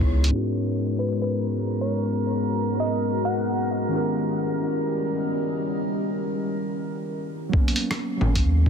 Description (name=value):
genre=future garage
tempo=133 BPM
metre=4/4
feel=swing 65% on 16ths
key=G# minor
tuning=A4 = 443 Hz
part: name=muted felt-like synth keys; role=accompaniment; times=0.0-8.7 s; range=G#2 to A#4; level=-27 LUFS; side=equal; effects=chorus, vintage 12-bit sampler grit, sidechain pumping, ping-pong delay
part: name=deep dark ambient pad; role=sustained chords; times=0.0-8.7 s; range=E3 to D#5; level=-28 LUFS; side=left 1 dB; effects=chorus, built-in reverb, sidechain pumping
part: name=warm sub bass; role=bass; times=0.0-0.3, 8.2-8.7 s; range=G#1 to D#2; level=-20 LUFS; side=equal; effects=sidechain pumping
part: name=electronic kick drum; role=drums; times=0.0-0.1, 7.5-8.7 s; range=none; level=-22 LUFS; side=equal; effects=overdrive
part: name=lo-fi sampler-style drum kit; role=drums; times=0.2-0.3, 7.7-8.4 s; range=bongos, hi-hat, rim click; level=-28 LUFS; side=equal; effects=overdrive
part: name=drifting glass-harmonics texture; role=texture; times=1.6-6.6 s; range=A#4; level=-35 LUFS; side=right 4 dB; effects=chorus, built-in reverb
part: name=bell-like FM electric piano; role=melody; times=1.0-3.7 s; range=B4 to F#5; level=-32 LUFS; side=equal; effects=chorus, ping-pong delay
room=light reverb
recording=dense, heavily limited modern master, low-pass filter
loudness=-22 LUFS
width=side -7 dB against mid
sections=0.3-7.5 A section; 7.5-8.7 B section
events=filter sweep 0.3-7.5; break 6.6-7.5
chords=0.3 G#m11; 3.9 D#7b9; 7.5 G#m11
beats=| 0.32 0.77 1.22 1.67 | 2.12 2.57 3.02 3.48 | 3.93 4.38 4.83 5.28 | 5.73 6.18 6.63 7.08 | 7.54 7.99 8.44